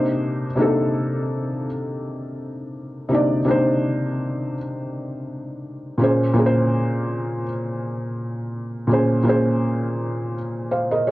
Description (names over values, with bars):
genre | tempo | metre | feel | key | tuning
hip hop | 83 BPM | 4/4 | swing 56% on 16ths | unclear | A4 = 439 Hz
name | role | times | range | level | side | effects
felt-muted upright piano | solo | 0.0-11.1 s | Bb2 to F5 | -20 LUFS | equal | cassette tape, low-pass filter
room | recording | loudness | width
wet studio reverb, RT60 0.6 s | worn, warbling old tape, cassette tape, warbly pitch drift | -20 LUFS | side -17 dB against mid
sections
0.0-11.1 A section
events
none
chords
0.0 Cm9; 6.0 Bbm9